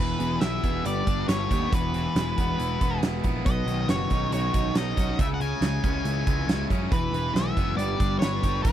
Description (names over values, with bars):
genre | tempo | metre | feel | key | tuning
classic rock | 138 BPM | 4/4 | straight | E major | A4 = 440 Hz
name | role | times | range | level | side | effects
octave-fuzz lead guitar | melody | 0.0-8.7 s | B4 to G#5 | -31 LUFS | left 2 dB | distortion
cranked stack guitar | riff | 0.0-8.7 s | B2 to B4 | -31 LUFS | left 10 dB | overdrive
cranked stack guitar | riff | 0.0-8.7 s | E2 to C#5 | -33 LUFS | right 15 dB | overdrive
fuzz picked electric bass | bass | 0.0-8.7 s | E1 to F#2 | -29 LUFS | right 1 dB | overdrive
huge arena drum kit | drums | 0.2-8.7 s | hi-hat, kick drum, snare drum | -27 LUFS | right 1 dB | none
room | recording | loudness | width
small room ambience | dry, close 1970s-style studio recording | -23 LUFS | side -11 dB against mid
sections
0.0-8.7 A section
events
none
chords
0.0 E; 0.9 Gadd9; 1.7 E; 3.5 Badd9; 5.2 C#m; 6.9 E; 7.8 Gadd9